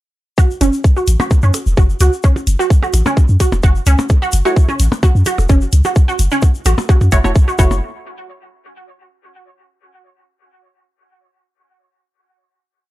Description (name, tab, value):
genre	minimal techno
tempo	129 BPM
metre	4/4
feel	straight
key	F# minor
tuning	A4 = 440 Hz
part	resonant blip pluck	riff	0.4-7.8 s	C#4 to C#5	-19 LUFS	right 2 dB	ensemble chorus, sidechain pumping, dub echo
part	electronic kick drum	drums	0.4-7.7 s	none	-11 LUFS	equal	studio reverb
part	tube shaker	percussion	0.4-7.8 s	none	-29 LUFS	left 5 dB	none
part	punchy sub bass	bass	0.6-7.8 s	E1 to F#2	-13 LUFS	equal	sidechain pumping
part	electronic hi-hat	drums	0.6-7.2 s	none	-24 LUFS	right 1 dB	studio reverb
part	percussion blips	percussion	0.6-7.8 s	none	-22 LUFS	left 1 dB	studio reverb, dub echo
part	filtered dub chord stab	stabs	4.5-7.8 s	A3 to C#5	-21 LUFS	right 1 dB	chorus, phaser, dub echo
room	light reverb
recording	dark, warm production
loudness	-11 LUFS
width	side -16 dB against mid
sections	0.4-7.8 groove; 7.8-9.7 final hit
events	none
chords	0.4 F#5; 7.8 N.C.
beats	| 0.38 0.84 1.31 1.77 | 2.24 2.70 3.17 3.63 | 4.10 4.56 5.03 5.50 | 5.96 6.42 6.89 7.36